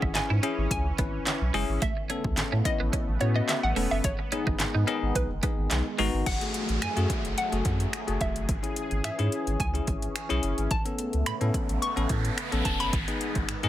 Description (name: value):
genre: dance-pop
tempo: 108 BPM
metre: 4/4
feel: straight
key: F# dorian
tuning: A4 = 440 Hz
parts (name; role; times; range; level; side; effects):
- hollow square pluck; melody; 0.0-13.7 s; B4 to C#6; -33 LUFS; equal; chorus, digital delay
- bell-like tine electric piano; accompaniment; 0.0-13.7 s; A3 to B4; -32 LUFS; left 5 dB; sidechain pumping
- sweeping resonant pad; sustained chords; 0.0-13.7 s; C#3 to G#4; -37 LUFS; right 2 dB; chorus, sidechain pumping
- twelve-string electric guitar; riff; 0.0-6.1 s; G#3 to E4; -34 LUFS; right 7 dB; wide subtle chorus
- warm sub bass; bass; 0.0-13.7 s; E1 to A2; -28 LUFS; equal; sidechain pumping
- deep house drum kit; drums; 0.0-13.7 s; crash cymbal, finger snaps, handclaps, hi-hat, kick drum, snare drum; -30 LUFS; equal; overdrive
- downlifter and noise sweep; sound effects; 6.3-13.7 s; none; -37 LUFS; right 1 dB; none
room: little or no reverb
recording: none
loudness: -25 LUFS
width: side -13 dB against mid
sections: 0.0-6.3 A section; 6.3-13.7 B section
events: noise sweep 11.3-13.7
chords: 0.0 C#m/G#; 1.8 Aadd9; 4.0 G#m; 6.3 F#madd9; 8.5 C#m/G#; 10.7 Aadd9; 12.9 G#m